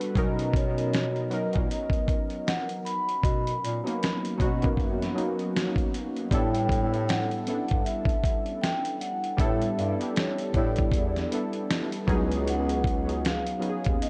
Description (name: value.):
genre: lo-fi hip hop.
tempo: 78 BPM.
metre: 4/4.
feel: swing 58% on 16ths.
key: unclear.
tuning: A4 = 440 Hz.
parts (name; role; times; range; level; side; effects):
warm analog keys; accompaniment; 0.0-14.1 s; F#3 to B4; -32 LUFS; equal; chorus, tape echo.
dusty soul sampler-style drum kit; drums; 0.0-14.1 s; hi-hat, kick drum, snare drum; -30 LUFS; equal; vintage 12-bit sampler grit.
breathy bass clarinet; bass; 0.2-14.0 s; C#2 to B2; -32 LUFS; equal; none.
vibraphone with soft mallets; melody; 0.6-14.1 s; C#5 to B5; -35 LUFS; equal; tape echo.
room: light reverb, digital ambience.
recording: echo-heavy mix, cassette tape.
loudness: -27 LUFS.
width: mono.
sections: 0.0-6.3 A section; 6.3-14.1 B section.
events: none.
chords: 0.2 Bmaj9; 6.3 A9sus4; 12.1 C#9sus4.